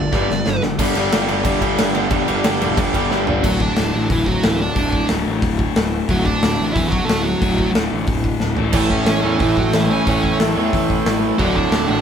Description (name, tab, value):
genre	punk rock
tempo	181 BPM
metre	4/4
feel	straight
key	D major from 3.4 s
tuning	A4 = 438 Hz
part	dark smooth lead guitar	melody	0.0-0.6, 3.4-12.0 s	E3 to D5	-21 LUFS	right 3 dB	overdrive
part	crunchy overdriven guitar	riff	0.0-12.0 s	D2 to A3	-22 LUFS	left 5 dB	none
part	overdriven electric guitar	riff	0.0-3.4, 8.7-12.0 s	D2 to A3	-20 LUFS	right 3 dB	none
part	fuzz picked electric bass	bass	0.0-12.0 s	D1 to E2	-24 LUFS	equal	overdrive
part	big rock drum kit	drums	0.1-11.8 s	crash cymbal, hi-hat, kick drum, snare drum, toms	-21 LUFS	equal	none
room	light reverb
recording	band playing live in one room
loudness	-15 LUFS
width	side -8 dB against mid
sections	0.8-3.4 A section; 3.4-12.0 B section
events	drum fill 0.1-0.8, 3.1-3.4, 8.4-8.7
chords	0.0 G5; 3.4 D; 8.6 A; 11.4 D